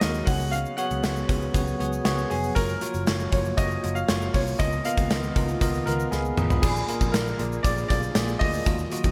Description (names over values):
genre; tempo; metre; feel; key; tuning
1980s-style pop; 118 BPM; 4/4; straight; unclear; A4 = 440 Hz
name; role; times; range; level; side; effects
clear baby grand piano; melody; 0.0-9.1 s; G#4 to F#5; -33 LUFS; equal; subtle chorus, delay
bell-like tine electric piano; accompaniment; 0.0-9.1 s; A#2 to D#6; -32 LUFS; equal; none
phased analog pad; sustained chords; 0.0-9.1 s; C#3 to G#4; -39 LUFS; equal; none
vintage muted picked electric bass; bass; 0.0-9.1 s; E#1 to D#2; -32 LUFS; equal; none
gated 80s drum kit; drums; 0.0-9.1 s; crash cymbal, hi-hat, kick drum, snare drum, tambourine, toms; -28 LUFS; equal; none
tube shaker; percussion; 0.0-9.1 s; none; -49 LUFS; equal; none
room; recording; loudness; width
moderate plate reverb, RT60 2.0 s; bright 1980s-style digital production; -25 LUFS; mono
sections
0.0-6.6 A section; 6.6-9.1 B section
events
drum fill 6.1-6.6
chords
0.3 C#7sus4; 2.6 F#maj7; 4.6 C#13; 6.6 A#7